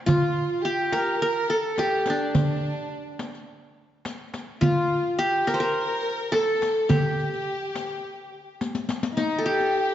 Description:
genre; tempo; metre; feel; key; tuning
Turkish makam ensemble; 106 BPM; 4/4; straight; G makam nihavent; A4 = 440 Hz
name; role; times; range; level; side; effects
qanun; melody; 0.1-9.9 s; D4 to C5; -24 LUFS; equal; none
warm chamber violin section; second line; 0.1-9.9 s; D4 to Bb4; -30 LUFS; left 1 dB; none
darbuka; percussion; 0.1-9.0 s; none; -26 LUFS; right 1 dB; none
riq; percussion; 0.1-9.7 s; none; -32 LUFS; left 4 dB; none
room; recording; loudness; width
wet scoring stage reverb, RT60 1.8 s; dark, warm production, nothing above 7.6 kHz; -22 LUFS; side -11 dB against mid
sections
0.0-9.2 A section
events
drum fill 8.6-9.2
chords
none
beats
| 0.08 0.65 1.22 1.78 | 2.35 2.92 3.49 4.06 | 4.63 5.20 5.76 6.33 | 6.90 7.47 8.04 8.61 | 9.18 9.74

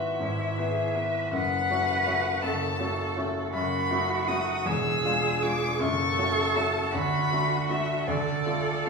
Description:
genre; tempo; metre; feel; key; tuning
classical, slow romantic movement for piano trio; 53 BPM (dotted quarters); 6/8; rubato; unclear; A4 = 440 Hz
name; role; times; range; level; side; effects
rich violin; melody; 0.0-8.9 s; D5 to E6; -29 LUFS; left 4 dB; none
clear cello; second line; 0.0-8.9 s; E4 to B4; -30 LUFS; right 4 dB; none
clear concert grand piano; accompaniment; 0.0-8.9 s; E1 to B4; -28 LUFS; equal; none
room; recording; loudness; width
wet recital hall reverb, RT60 1.7 s; heard from further back in the room, small room ambience; -24 LUFS; side -4 dB against mid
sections
0.0-8.9 A section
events
none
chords
0.0 E/G#; 1.3 F#m; 3.5 B7/F#; 4.7 E7b9; 5.8 F#m; 6.9 D; 8.1 Dm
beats
0.21 | 1.33 2.43 | 3.54 4.66 | 5.80 6.93 | 8.08

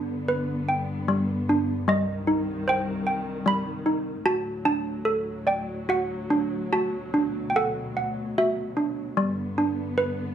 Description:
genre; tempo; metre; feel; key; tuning
children's music, lullaby; 75 BPM; 3/4; rubato; G major; A4 = 439 Hz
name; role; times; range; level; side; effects
malleted handbells; melody; 0.0-10.3 s; G3 to B5; -24 LUFS; right 1 dB; none
dark symphonic string section; sustained chords; 0.0-10.3 s; C2 to B3; -31 LUFS; left 2 dB; none
room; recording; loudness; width
light reverb; close, detailed microphones; -23 LUFS; side -9 dB against mid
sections
0.0-10.3 A section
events
none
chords
0.0 G; 1.9 Cm; 4.3 D; 9.2 G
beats
0.28 1.08 | 1.88 2.67 3.46 | 4.25 5.06 5.89 | 6.73 7.56 8.38 | 9.18 9.98

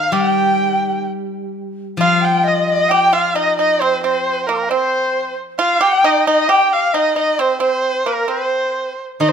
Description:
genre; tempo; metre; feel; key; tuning
chinese traditional, Chinese chamber ensemble; 66 BPM; 2/4; rubato; G jue mode; A4 = 438 Hz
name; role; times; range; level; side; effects
warm erhu; melody; 0.0-9.3 s; Bb4 to G5; -18 LUFS; right 3 dB; none
large dizi; second line; 0.0-9.3 s; Bb4 to Eb6; -19 LUFS; left 6 dB; none
pipa; second line; 0.0-9.3 s; Bb3 to G4; -20 LUFS; right 5 dB; none
steel-string zither; accompaniment; 0.0-4.7, 9.2-9.3 s; Eb3 to G3; -22 LUFS; left 3 dB; none
room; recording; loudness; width
light reverb; close, detailed microphones; -14 LUFS; side -7 dB against mid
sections
0.0-2.0 A section; 2.0-9.3 B section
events
none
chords
none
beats
| 0.13 1.06 | 1.99 2.91 | 3.81 4.71 | 5.59 6.48 | 7.38 8.29 | 9.21

